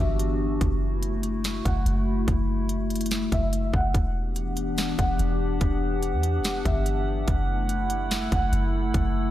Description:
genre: hip hop, atmospheric cloud-rap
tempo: 144 BPM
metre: 4/4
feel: half-time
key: unclear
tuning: A4 = 440 Hz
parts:
  - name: felt-muted upright piano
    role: melody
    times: 0.0-8.5 s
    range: E5 to F#5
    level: -34 LUFS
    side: right 1 dB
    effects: lush chorus, analog delay
  - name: warbly tape-like pad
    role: sustained chords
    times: 0.0-9.3 s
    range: E3 to F#5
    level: -28 LUFS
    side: left 1 dB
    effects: chorus, built-in reverb, sidechain pumping
  - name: soft 808-style bass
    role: bass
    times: 0.0-9.3 s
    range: E1 to E2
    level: -26 LUFS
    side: equal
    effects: none
  - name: trap drum kit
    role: drums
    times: 0.2-9.0 s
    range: hi-hat, kick drum, snare drum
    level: -27 LUFS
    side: equal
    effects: none
  - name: drifting glass-harmonics texture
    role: texture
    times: 4.5-9.3 s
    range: D4 to F#5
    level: -38 LUFS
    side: right 1 dB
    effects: chorus, built-in reverb
room: moderate lush hall reverb, RT60 1.9 s, digital ambience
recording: dreamy mix soaked in reverb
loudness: -23 LUFS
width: side -13 dB against mid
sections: 0.0-9.3 A section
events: none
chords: 0.0 Em9; 0.6 F#m7; 3.9 Em9; 7.3 F#m7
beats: 0.19 | 0.61 1.03 1.44 1.86 | 2.28 2.69 3.11 3.53 | 3.94 4.36 4.78 5.19 | 5.61 6.03 6.44 6.86 | 7.28 7.69 8.11 8.53 | 8.94

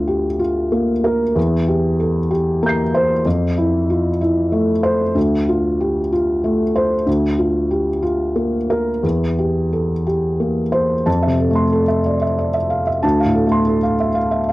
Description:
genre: neoclassical minimalist piano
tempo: 94 BPM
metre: 3/4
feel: rubato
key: unclear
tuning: A4 = 440 Hz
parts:
  - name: felt-muted upright piano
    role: solo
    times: 0.0-14.5 s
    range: D2 to C7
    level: -15 LUFS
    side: equal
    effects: cassette tape
room: moderate studio reverb, RT60 0.6 s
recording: home recording on cassette, nothing above 10.3 kHz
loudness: -15 LUFS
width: side -18 dB against mid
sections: 0.0-11.1 A section; 11.1-14.5 A section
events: none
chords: 0.0 Bb/D; 1.4 C7/E; 3.3 Fmaj7; 5.2 Dm7; 7.1 Bb/D; 9.0 C7/E; 11.1 Fmaj7; 13.0 Dm7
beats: 0.07 0.72 | 1.36 1.99 2.62 | 3.25 3.89 4.52 | 5.16 5.80 6.43 | 7.06 7.70 8.35 | 9.03 9.72 10.40 | 11.07 11.73 12.38 | 13.03 13.68 14.31

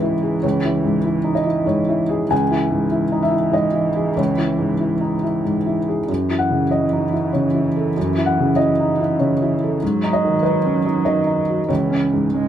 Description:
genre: neoclassical piano and strings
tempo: 96 BPM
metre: 3/4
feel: rubato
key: C# minor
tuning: A4 = 440 Hz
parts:
  - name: muted cello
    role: second line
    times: 0.0-12.5 s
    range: E3 to G#3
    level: -24 LUFS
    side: right 4 dB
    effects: none
  - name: felt-muted upright piano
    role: accompaniment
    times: 0.0-12.5 s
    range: C#2 to G#5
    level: -17 LUFS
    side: equal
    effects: none
room: light reverb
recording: close, detailed microphones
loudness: -16 LUFS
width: side -10 dB against mid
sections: 0.0-12.5 A section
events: none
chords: 0.0 C#madd9; 6.1 F#m7; 9.8 G#m7; 11.7 C#m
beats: | 0.43 1.05 1.67 | 2.31 2.92 3.54 | 4.18 4.81 5.45 | 6.08 6.71 7.33 | 7.96 8.58 9.20 | 9.81 10.43 11.05 | 11.69 12.34

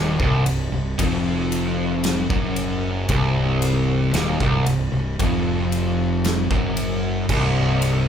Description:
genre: stoner and doom metal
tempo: 57 BPM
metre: 4/4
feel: straight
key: C minor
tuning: A4 = 440 Hz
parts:
  - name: fuzz guitar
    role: riff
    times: 0.0-8.1 s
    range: C2 to F#2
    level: -20 LUFS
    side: left 1 dB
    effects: distortion
  - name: fuzz fingered electric bass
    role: bass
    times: 0.0-8.1 s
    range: C1 to F#1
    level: -26 LUFS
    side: equal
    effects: overdrive
  - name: big rock drum kit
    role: drums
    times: 0.2-8.1 s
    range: crash cymbal, kick drum, ride cymbal, snare drum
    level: -26 LUFS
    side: equal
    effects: none
room: light reverb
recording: band playing live in one room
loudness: -18 LUFS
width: side -8 dB against mid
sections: 0.0-8.1 A section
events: none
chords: none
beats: 0.99 2.04 | 3.09 4.14 5.19 6.24 | 7.29

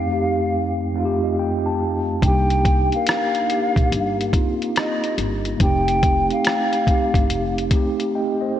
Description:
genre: lo-fi hip hop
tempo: 71 BPM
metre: 4/4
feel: swing 65% on 16ths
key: unclear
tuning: A4 = 442 Hz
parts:
  - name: mellow hollow silver concert flute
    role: melody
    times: 0.0-7.5 s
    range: Eb5 to G5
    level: -24 LUFS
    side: left 1 dB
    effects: low-pass filter, diffuse ambient delay
  - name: mellow tine electric piano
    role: accompaniment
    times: 0.0-8.6 s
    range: F2 to A5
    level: -22 LUFS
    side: right 1 dB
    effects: medium stereo tremolo, cassette tape, low-pass filter
  - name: upright bass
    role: bass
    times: 2.2-7.7 s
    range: F1 to C2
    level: -24 LUFS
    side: equal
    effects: none
  - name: lo-fi sampler-style drum kit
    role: drums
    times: 2.2-8.1 s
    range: hi-hat, kick drum, rim click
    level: -20 LUFS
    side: equal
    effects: none
room: moderate lush hall reverb, RT60 2.6 s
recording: dreamy mix soaked in reverb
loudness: -18 LUFS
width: side -11 dB against mid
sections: 0.0-8.6 A section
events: tine electric piano fill 0.5-2.2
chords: 0.0 F9; 2.2 Cm9; 5.6 F9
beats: 0.53 1.38 | 2.22 3.07 3.91 4.76 | 5.60 6.45 7.29 8.14

